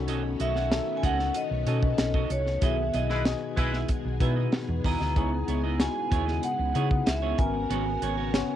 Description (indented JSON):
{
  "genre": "polished 1980s jazz-funk pop",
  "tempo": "94 BPM",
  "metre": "4/4",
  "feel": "straight",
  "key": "unclear",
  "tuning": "A4 = 440 Hz",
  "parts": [
    { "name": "tine electric piano", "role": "accompaniment", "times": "0.0-8.6 s", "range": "D#3 to C#5", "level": "-33 LUFS", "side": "left 9 dB", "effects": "medium stereo tremolo, analog chorus" },
    { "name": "string machine, full ensemble", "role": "sustained chords", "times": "0.0-8.6 s", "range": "B2 to A#4", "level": "-38 LUFS", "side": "equal", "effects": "ensemble chorus" },
    { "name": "hollow-body short-scale fingered electric bass", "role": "bass", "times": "0.0-8.4 s", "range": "G#1 to C#3", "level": "-29 LUFS", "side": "equal", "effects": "none" },
    { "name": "clean electric guitar", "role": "riff", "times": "0.1-8.5 s", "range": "B3 to F#5", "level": "-34 LUFS", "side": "right 12 dB", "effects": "wide subtle chorus" },
    { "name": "tight funk drum kit", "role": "drums", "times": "0.1-8.5 s", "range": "hi-hat, kick drum, snare drum", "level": "-28 LUFS", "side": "equal", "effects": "cassette tape" },
    { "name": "vibraphone with medium hard mallets", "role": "melody", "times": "0.4-8.6 s", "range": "C#5 to A#5", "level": "-31 LUFS", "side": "moving between left 5 dB and right 5 dB", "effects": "auto-pan" },
    { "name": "warm horn section", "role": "second line", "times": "3.1-3.8 s", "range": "G#3 to B4", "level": "-31 LUFS", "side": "left 1 dB", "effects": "none" }
  ],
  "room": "light reverb",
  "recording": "home recording on cassette",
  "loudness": "-24 LUFS",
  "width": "side -11 dB against mid",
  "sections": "0.0-8.6 A section",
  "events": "band accent 2.6-5.2",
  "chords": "0.0 B9; 2.6 Emaj7/B; 5.2 C#m7; 7.4 G#m11",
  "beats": "| 0.08 0.72 1.35 1.99 | 2.62 3.26 3.89 4.53 | 5.16 5.80 6.43 7.07 | 7.70 8.34"
}